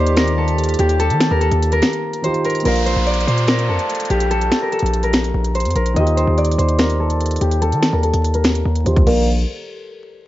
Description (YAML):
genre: hip hop, trap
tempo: 145 BPM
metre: 4/4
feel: half-time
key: Bb major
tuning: A4 = 444 Hz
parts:
  - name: concert harp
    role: melody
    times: 0.0-9.8 s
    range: G4 to Eb5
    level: -20 LUFS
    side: left 1 dB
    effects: low-pass filter
  - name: dark grand piano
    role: accompaniment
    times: 0.0-9.3 s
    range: Eb3 to F5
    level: -24 LUFS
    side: right 1 dB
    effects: low-pass filter
  - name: hollow soft pad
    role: sustained chords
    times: 0.0-2.6 s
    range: Eb3 to G4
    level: -26 LUFS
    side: right 1 dB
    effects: chorus
  - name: distorted 808-style bass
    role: bass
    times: 0.0-9.5 s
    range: Bb1 to Eb3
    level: -18 LUFS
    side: equal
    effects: distortion
  - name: trap drum kit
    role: drums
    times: 0.1-9.2 s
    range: crash cymbal, finger snaps, hi-hat, kick drum, snare drum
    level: -20 LUFS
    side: equal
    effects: none
  - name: downlifter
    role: sound effects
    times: 2.7-6.0 s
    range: none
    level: -29 LUFS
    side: equal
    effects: none
room: digital ambience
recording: vinyl crackle, nothing above 7.6 kHz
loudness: -15 LUFS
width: side -15 dB against mid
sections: 0.0-2.7 A section; 2.7-9.3 B section; 9.3-10.3 C section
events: break 1.8-2.7; filter sweep 2.7-9.3; drum fill 8.9-9.3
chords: 0.0 Ebadd9; 2.7 Bb; 6.0 Ebadd9; 9.1 Bb; 9.3 N.C.